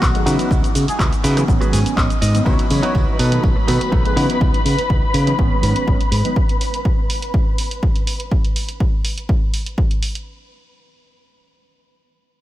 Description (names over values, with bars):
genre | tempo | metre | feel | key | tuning
filtered disco house | 123 BPM | 4/4 | straight | C# minor | A4 = 442 Hz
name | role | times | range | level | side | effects
muted trumpet section | melody | 0.0-4.2 s | F#4 to C#5 | -30 LUFS | equal | sidechain pumping, low-pass filter, diffuse ambient delay
reed electric piano | accompaniment | 0.0-6.3 s | D#3 to D#5 | -24 LUFS | equal | phaser, sidechain pumping, low-pass filter
direct-recorded clean electric guitar | riff | 0.0-4.4 s | D#4 to G#5 | -28 LUFS | right 2 dB | sidechain pumping, low-pass filter
modern bright fingered electric bass | bass | 0.0-6.2 s | G#1 to C#3 | -18 LUFS | equal | sidechain pumping, low-pass filter
electronic kick drum | drums | 0.0-9.9 s | none | -18 LUFS | equal | small room ambience
punchy analog drum machine | drums | 0.0-10.2 s | cabasa, handclaps, hi-hat, rim click | -26 LUFS | equal | sidechain pumping on hats, small room ambience, sidechain pumping on perc
tambourine | percussion | 0.0-6.3 s | none | -40 LUFS | right 3 dB | none
dark studio string section | sustained chords | 2.5-8.3 s | B4 to B5 | -25 LUFS | left 1 dB | sidechain pumping, low-pass filter
room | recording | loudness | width
light reverb | none | -15 LUFS | side -14 dB against mid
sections
0.0-2.5 A section; 2.5-10.3 B section; 10.3-12.4 C section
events
clean electric guitar fill 1.5-2.5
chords
0.3 C#m11; 1.5 G#m7; 2.5 C#m11; 3.2 B7; 4.2 C#m11; 5.4 G#m7; 6.4 N.C.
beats
0.02 | 0.51 1.00 1.49 1.97 | 2.46 2.95 3.44 3.92 | 4.41 4.90 5.39 5.88 | 6.36 6.85 7.34 7.83 | 8.31 8.80 9.29 9.78